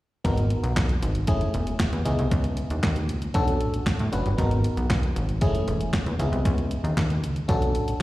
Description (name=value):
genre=early-eighties boogie funk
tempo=116 BPM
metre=4/4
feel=straight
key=G# minor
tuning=A4 = 439 Hz
part: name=FM electric piano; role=accompaniment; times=0.2-8.0 s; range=G#3 to B4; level=-29 LUFS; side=left 1 dB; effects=chorus, plate reverb, slapback echo
part: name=plucky analog bass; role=bass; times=0.2-7.9 s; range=E1 to A2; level=-25 LUFS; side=equal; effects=none
part: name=crisp 8-bit digital drum machine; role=drums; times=0.2-8.0 s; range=handclaps, hi-hat, kick drum, snare drum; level=-26 LUFS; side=equal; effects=slapback echo
room=light reverb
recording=live gig heard through the venue's PA, recital hall reverb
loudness=-22 LUFS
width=side -17 dB against mid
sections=0.2-8.0 A section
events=none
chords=0.2 G#m9; 1.3 F#m9; 2.1 C#m9; 3.3 Bm9; 4.4 G#m9; 5.4 F#m9; 6.2 C#m9; 7.5 Bm9